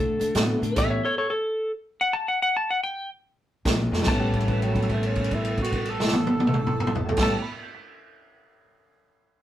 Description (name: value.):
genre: electric blues shuffle.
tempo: 145 BPM.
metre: 4/4.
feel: swing 65% on 8ths.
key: A mixolydian.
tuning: A4 = 440 Hz.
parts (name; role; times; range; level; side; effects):
clean lap steel guitar; melody; 0.0-7.4 s; A4 to A5; -26 LUFS; left 1 dB; none.
clean electric guitar; riff; 0.0-1.0, 3.7-7.4 s; A2 to C#4; -30 LUFS; left 3 dB; none.
upright bass; bass; 0.0-0.9, 3.7-7.3 s; A1 to A2; -31 LUFS; right 1 dB; none.
vintage drum kit; drums; 0.2-0.9, 3.7-7.3 s; crash cymbal, hi-hat, kick drum, snare drum, toms; -25 LUFS; equal; none.
bright grand piano; accompaniment; 0.4-1.0, 3.7-7.8 s; A2 to B6; -31 LUFS; right 2 dB; none.
clear tenor saxophone; second line; 4.4-7.3 s; E3 to A4; -30 LUFS; right 4 dB; none.
room: moderate studio reverb, RT60 0.5 s.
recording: rough rehearsal-room recording, warm saturation.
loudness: -22 LUFS.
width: side -12 dB against mid.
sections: 0.0-4.1 A section; 4.1-7.4 B section.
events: stop 0.8-3.7; drum fill 3.9; held note 4.1-7.1.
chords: 0.0 D9; 0.8 A9; 3.7 Bb9; 4.1 A9.